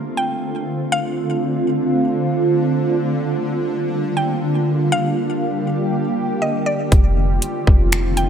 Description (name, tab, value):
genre	hip hop, atmospheric cloud-rap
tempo	120 BPM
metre	4/4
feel	half-time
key	Bb major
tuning	A4 = 440 Hz
part	shimmering ambient pad	sustained chords	0.0-8.3 s	D3 to G4	-19 LUFS	right 1 dB	chorus, built-in reverb, sidechain pumping
part	mallet-like synth pluck	melody	0.2-8.3 s	D5 to G5	-24 LUFS	equal	chorus, digital delay
part	soft 808-style bass	bass	6.9-8.3 s	F1	-18 LUFS	equal	none
part	trap drum kit	drums	6.9-8.3 s	finger snaps, hi-hat, kick drum	-14 LUFS	equal	none
room	moderate lush hall reverb, RT60 2.2 s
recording	none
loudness	-17 LUFS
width	side -8 dB against mid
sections	0.0-8.3 A section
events	none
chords	0.0 Dm7; 2.9 Bb6; 6.9 F7